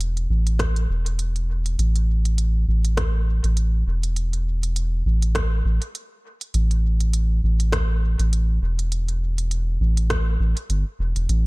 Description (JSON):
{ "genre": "ambient dub", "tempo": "101 BPM", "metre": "4/4", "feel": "swing 56% on 16ths", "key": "unclear", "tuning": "A4 = 440 Hz", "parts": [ { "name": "soft dub sub bass", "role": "bass", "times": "0.0-11.5 s", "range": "E1 to A1", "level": "-20 LUFS", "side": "equal", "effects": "none" }, { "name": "organic electronic drum kit", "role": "drums", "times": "0.0-11.4 s", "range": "hi-hat, rim click", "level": "-30 LUFS", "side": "equal", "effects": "studio reverb, dub echo" }, { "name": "electronic kick drum", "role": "drums", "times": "0.6-10.2 s", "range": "none", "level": "-28 LUFS", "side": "equal", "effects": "studio reverb" } ], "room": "little or no reverb", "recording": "echo-heavy mix", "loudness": "-20 LUFS", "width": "side -25 dB against mid", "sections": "0.0-1.8 A section; 1.8-11.5 B section", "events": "none", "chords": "none", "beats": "0.00 0.60 1.19 | 1.79 2.38 2.97 3.57 | 4.16 4.76 5.35 5.95 | 6.54 7.13 7.73 8.32 | 8.91 9.51 10.10 10.70 | 11.29" }